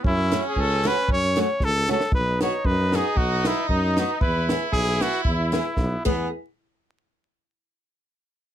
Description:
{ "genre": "alpine folk, alpine dance band", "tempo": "115 BPM", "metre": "2/4", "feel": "swing 55% on 8ths", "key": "E major", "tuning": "A4 = 440 Hz", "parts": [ { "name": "mellow trumpet", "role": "second line", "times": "0.0-6.3 s", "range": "B3 to E4", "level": "-29 LUFS", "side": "right 2 dB", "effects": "none" }, { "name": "mellow tuba", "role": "bass", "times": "0.0-6.3 s", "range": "B1 to F#2", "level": "-26 LUFS", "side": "equal", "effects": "none" }, { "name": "compact cocktail drum kit", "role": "drums", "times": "0.0-6.2 s", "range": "crash cymbal, hi-hat, kick drum, snare drum", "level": "-25 LUFS", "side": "equal", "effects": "none" }, { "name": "clear trumpet", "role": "melody", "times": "0.1-6.3 s", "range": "B3 to C#5", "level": "-25 LUFS", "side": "equal", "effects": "none" }, { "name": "picked steel-string acoustic guitar", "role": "accompaniment", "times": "0.3-6.3 s", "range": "A3 to G#4", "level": "-27 LUFS", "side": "equal", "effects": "none" } ], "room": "little or no reverb", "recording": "close, detailed microphones, vinyl crackle", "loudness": "-20 LUFS", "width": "side -10 dB against mid", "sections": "0.0-6.3 A section; 6.3-7.3 B section", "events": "drum fill 1.6-2.1, 5.8-6.3", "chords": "0.0 F#m; 2.1 B; 4.2 E; 6.3 N.C." }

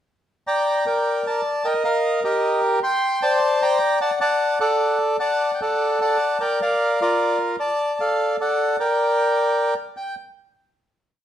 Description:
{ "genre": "tango", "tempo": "152 BPM", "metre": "3/4", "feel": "rubato", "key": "G minor", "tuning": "A4 = 440 Hz", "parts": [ { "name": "bandoneon", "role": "solo", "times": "0.5-10.2 s", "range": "F4 to C6", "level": "-18 LUFS", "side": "equal", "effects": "none" } ], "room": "wet studio reverb, RT60 0.9 s", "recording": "heard from further back in the room", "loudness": "-18 LUFS", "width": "side -10 dB against mid", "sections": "0.5-10.0 A section; 10.0-11.2 final note", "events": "none", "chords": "0.5 Gm; 1.6 Eb; 2.8 Csus2; 4.0 D; 6.4 Bb6; 7.6 D5; 8.8 Gm; 10.0 N.C." }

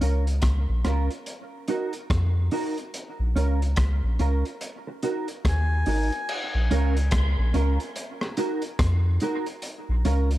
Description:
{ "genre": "dub reggae", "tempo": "72 BPM", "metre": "4/4", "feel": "swing 61% on 16ths", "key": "Bb minor", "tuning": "A4 = 441 Hz", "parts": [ { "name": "mellow electric guitar", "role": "accompaniment", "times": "0.0-10.3 s", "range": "Db4 to Bb4", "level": "-30 LUFS", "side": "right 3 dB", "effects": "ensemble chorus, dub echo" }, { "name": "soft dub sub bass", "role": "bass", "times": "0.0-10.4 s", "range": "Ab1 to F2", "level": "-22 LUFS", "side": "equal", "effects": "none" }, { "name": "crunchy breakbeat drum kit", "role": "drums", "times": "0.0-10.4 s", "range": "crash cymbal, hi-hat, kick drum, rim click", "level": "-29 LUFS", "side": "equal", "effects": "none" }, { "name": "melodica", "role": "melody", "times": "5.5-6.3 s", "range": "Ab5", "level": "-34 LUFS", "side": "left 3 dB", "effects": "dub echo" } ], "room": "studio ambience", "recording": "dark, warm production", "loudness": "-22 LUFS", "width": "side -15 dB against mid", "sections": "0.0-6.3 A section; 6.3-10.4 B section", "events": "none", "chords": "0.0 Bbm; 1.3 Ebm; 2.9 Bbm; 4.6 Ebm; 6.3 Bbm; 8.0 Ebm; 9.6 Bbm" }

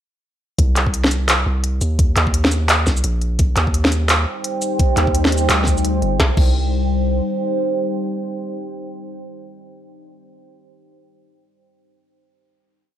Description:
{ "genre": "half-time drum and bass", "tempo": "171 BPM", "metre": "4/4", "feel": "swing 60% on 16ths, half-time", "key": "C minor", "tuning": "A4 = 440 Hz", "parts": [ { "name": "long sustained 808-style bass", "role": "bass", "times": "0.6-7.2 s", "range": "G1 to Eb2", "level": "-19 LUFS", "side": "equal", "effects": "none" }, { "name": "electronic kick drum", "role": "drums", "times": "0.6-6.5 s", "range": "none", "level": "-18 LUFS", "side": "equal", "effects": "overdrive, small room ambience" }, { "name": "industrial drum kit", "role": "drums", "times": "0.6-6.5 s", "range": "crash cymbal, handclaps, hi-hat, shaker, snare drum", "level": "-18 LUFS", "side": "equal", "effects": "small room ambience" }, { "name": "deep dark ambient pad", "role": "sustained chords", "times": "4.1-9.3 s", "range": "G3 to G5", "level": "-22 LUFS", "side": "equal", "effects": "chorus, built-in reverb, sidechain pumping" } ], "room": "light reverb", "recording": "none", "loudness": "-15 LUFS", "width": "side -11 dB against mid", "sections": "0.6-6.2 drop; 6.2-9.0 final chord", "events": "drop 0.6-6.2", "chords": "0.6 Cm" }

